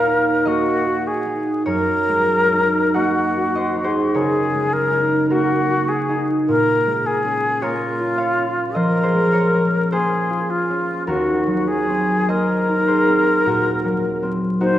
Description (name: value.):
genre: classical, impressionist duo for flute and harp.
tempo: 52 BPM.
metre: 4/4.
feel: rubato.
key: Eb dorian.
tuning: A4 = 440 Hz.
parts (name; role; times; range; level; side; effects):
bright silver concert flute; melody; 0.0-14.8 s; F4 to C5; -19 LUFS; left 1 dB; none.
concert harp; accompaniment; 0.0-14.8 s; Eb2 to Gb5; -19 LUFS; right 1 dB; none.
room: wet concert hall reverb, RT60 1.7 s.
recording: heard from further back in the room, vinyl crackle.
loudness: -16 LUFS.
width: side -12 dB against mid.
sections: 0.0-14.8 A section.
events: none.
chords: 0.0 Ebmadd9; 1.7 Gb69; 6.5 Bbm7; 11.1 Ebm6.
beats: 0.48 | 1.67 2.95 4.15 5.31 | 6.48 7.62 8.76 9.92 | 11.08 12.29 13.46 14.61.